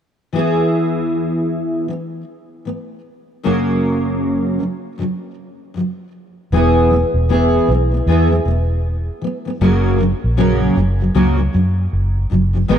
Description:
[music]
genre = pop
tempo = 78 BPM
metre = 4/4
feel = swing 60% on 16ths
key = unclear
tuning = A4 = 439 Hz
[part]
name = fingerpicked steel-string acoustic guitar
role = accompaniment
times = 0.3-12.8 s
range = F#2 to A#4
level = -16 LUFS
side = equal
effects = double-tracked left and right
[part]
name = vintage muted fingered electric bass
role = bass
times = 6.5-12.8 s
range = E1 to F#2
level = -16 LUFS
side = equal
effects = none
[sound]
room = moderate plate reverb, RT60 3.4 s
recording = dark, warm production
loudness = -14 LUFS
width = side -9 dB against mid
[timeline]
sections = 0.3-6.5 A section; 6.5-12.8 B section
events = none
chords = 0.3 E; 3.4 F#; 6.5 E; 9.6 F#

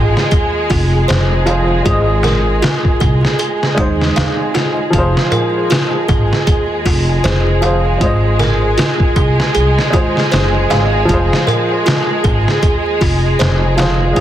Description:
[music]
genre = trip hop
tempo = 78 BPM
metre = 4/4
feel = swing 58% on 16ths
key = F minor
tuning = A4 = 440 Hz
[part]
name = warm upright piano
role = accompaniment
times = 0.0-14.2 s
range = F3 to Eb5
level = -20 LUFS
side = equal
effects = tremolo, tape echo
[part]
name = warm studio violin section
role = sustained chords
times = 0.0-14.2 s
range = Ab3 to Ab4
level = -19 LUFS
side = equal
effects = none
[part]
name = music box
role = arpeggios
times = 0.0-14.2 s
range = Eb4 to F5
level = -19 LUFS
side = right 3 dB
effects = tape echo
[part]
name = upright bass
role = bass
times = 0.0-14.2 s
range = F1 to Eb2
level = -16 LUFS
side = equal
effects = none
[part]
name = trip hop sampler-style drum kit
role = drums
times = 0.2-14.2 s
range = hi-hat, kick drum, snare drum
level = -16 LUFS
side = equal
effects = vintage 12-bit sampler grit
[part]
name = darbuka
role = percussion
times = 0.2-14.2 s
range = none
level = -24 LUFS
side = left 2 dB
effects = none
[sound]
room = light reverb, small room ambience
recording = dense, heavily limited modern master, vinyl crackle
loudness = -11 LUFS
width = side -12 dB against mid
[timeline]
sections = 0.0-14.2 A section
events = none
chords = 0.0 Fm; 1.9 Ab; 4.9 Fm; 8.0 Ab; 11.1 Fm

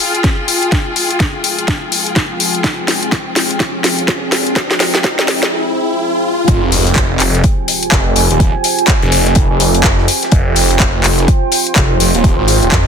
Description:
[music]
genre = bass house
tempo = 125 BPM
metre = 4/4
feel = swing 60% on 16ths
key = F minor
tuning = A4 = 444 Hz
[part]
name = deep dark ambient pad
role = sustained chords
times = 1.5-12.9 s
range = F3 to C6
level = -19 LUFS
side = right 3 dB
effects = chorus, built-in reverb, sidechain pumping
[part]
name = house drum kit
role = drums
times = 0.0-12.8 s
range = handclaps, hi-hat, snare drum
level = -15 LUFS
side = left 1 dB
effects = overdrive, small room ambience
[part]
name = riser and sub drop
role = sound effects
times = 1.5-8.4 s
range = none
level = -22 LUFS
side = left 1 dB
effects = none
[part]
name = warm studio string section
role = texture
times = 0.0-5.5 s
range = F4 to G5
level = -21 LUFS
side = left 2 dB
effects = sidechain pumping
[part]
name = electronic kick drum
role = drums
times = 0.2-12.8 s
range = none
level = -13 LUFS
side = equal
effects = overdrive, small room ambience
[part]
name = phased detuned saw bass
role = bass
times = 6.5-12.9 s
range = Eb1 to F2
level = -14 LUFS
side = equal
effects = phaser, tube saturation, sidechain pumping
[part]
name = modern studio drum kit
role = drums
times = 6.5-12.9 s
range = hi-hat, snare drum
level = -24 LUFS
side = left 5 dB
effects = none
[sound]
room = light reverb, studio ambience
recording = dense, heavily limited modern master, high-pass filter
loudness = -11 LUFS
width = side -7 dB against mid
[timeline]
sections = 0.0-6.5 A section; 6.5-12.9 B section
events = build-up 0.0-6.5; drum fill 0.0-5.5; filter sweep on ambient pad 0.0-6.5; riser 1.5-6.5; break 5.5-6.5; drop 6.5-12.9; impact 6.5-8.4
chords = 0.0 Fmadd9

